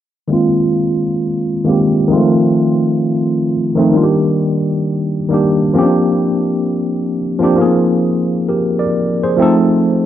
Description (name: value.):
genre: hip hop.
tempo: 66 BPM.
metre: 4/4.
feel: swing 64% on 16ths.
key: unclear.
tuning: A4 = 440 Hz.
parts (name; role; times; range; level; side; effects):
tine electric piano; accompaniment; 0.3-10.1 s; Eb3 to D5; -12 LUFS; equal; overdrive, medium stereo tremolo, cassette tape, low-pass filter.
room: light reverb.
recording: rough home demo mix.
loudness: -12 LUFS.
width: side -11 dB against mid.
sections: 0.3-10.1 A section.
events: filter sweep on tine electric piano 0.3-10.1.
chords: 0.3 Ab69; 2.1 F7; 3.9 Ebmaj7; 5.8 Bb69; 7.6 Ab69; 9.4 F7.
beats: | 0.31 1.22 2.12 3.03 | 3.94 4.85 5.76 6.67 | 7.58 8.49 9.40.